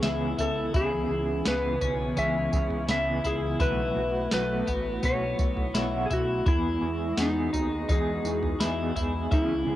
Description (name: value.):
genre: dream pop.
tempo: 84 BPM.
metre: 4/4.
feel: straight.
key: unclear.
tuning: A4 = 440 Hz.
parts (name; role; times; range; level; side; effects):
clean lap steel guitar; melody; 0.0-9.8 s; D#4 to E5; -29 LUFS; equal; cassette tape, analog delay.
mellow electric guitar; accompaniment; 0.0-9.8 s; B2 to G#4; -32 LUFS; right 1 dB; tremolo, lush chorus.
hollow soft pad; sustained chords; 0.0-9.8 s; C#3 to G#4; -35 LUFS; equal; ensemble chorus.
twelve-string electric guitar; arpeggios; 0.0-9.8 s; A3 to E4; -33 LUFS; left 3 dB; wide subtle chorus, analog delay.
fat analog bass; bass; 0.0-9.8 s; A1 to E2; -33 LUFS; equal; none.
soft vintage rhythm box; drums; 0.0-9.5 s; kick drum, snare drum, tambourine, toms; -29 LUFS; equal; overdrive, cassette tape.
room: light reverb.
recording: home recording on cassette.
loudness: -24 LUFS.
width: side -14 dB against mid.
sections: 0.0-9.8 A section.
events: none.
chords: 0.0 C#m7; 3.6 B7sus4; 6.5 Emaj7.